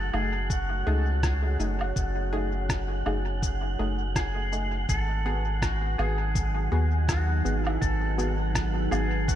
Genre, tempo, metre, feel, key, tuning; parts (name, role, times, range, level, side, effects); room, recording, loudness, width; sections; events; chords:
ambient dub; 82 BPM; 4/4; swing 57% on 16ths; F# dorian; A4 = 441 Hz
clean lap steel guitar; melody; 0.0-9.4 s; F#4 to A4; -34 LUFS; equal; vintage 12-bit sampler grit, dub echo
deep dark ambient pad; sustained chords; 0.0-9.4 s; F#3 to G#5; -36 LUFS; right 1 dB; chorus, built-in reverb
soft dub sub bass; bass; 0.0-9.4 s; F#1 to D#2; -27 LUFS; equal
wind-like tuned noise texture; texture; 0.0-9.4 s; F#5; -38 LUFS; right 2 dB; built-in reverb
filtered dub chord stab; stabs; 0.1-9.1 s; A3 to G#4; -35 LUFS; left 2 dB; chorus, dub echo
electronic woodblock, shaker and rim click; drums; 0.1-9.4 s; -34 LUFS; equal; dub echo
electronic kick drum; drums; 0.5-9.4 s; -29 LUFS; equal
little or no reverb; -24 LUFS; side -11 dB against mid
0.0-9.4 A section
0.0 F#m69; 4.9 G#m7